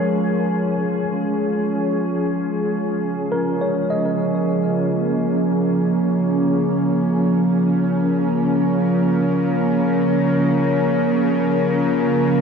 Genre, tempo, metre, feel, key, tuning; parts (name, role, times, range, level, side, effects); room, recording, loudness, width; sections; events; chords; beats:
ambient; free time; Db major; A4 = 445 Hz
glassy FM pad; sustained chords; 0.0-12.4 s; F3 to Bb4; -18 LUFS; right 1 dB; ensemble chorus, built-in reverb
tine electric piano; arpeggios; 0.0-12.4 s; Bb4 to Eb5; -28 LUFS; left 1 dB; ping-pong delay
bowed-like drone; drone; 3.3-12.4 s; Db3 to Db4; -24 LUFS; left 1 dB; built-in reverb
wet lush hall reverb, RT60 2.6 s; dark, warm production; -17 LUFS; side -6 dB against mid
0.0-12.4 A section
fade-out on tine electric piano 0.0-12.4
0.0 Db
free time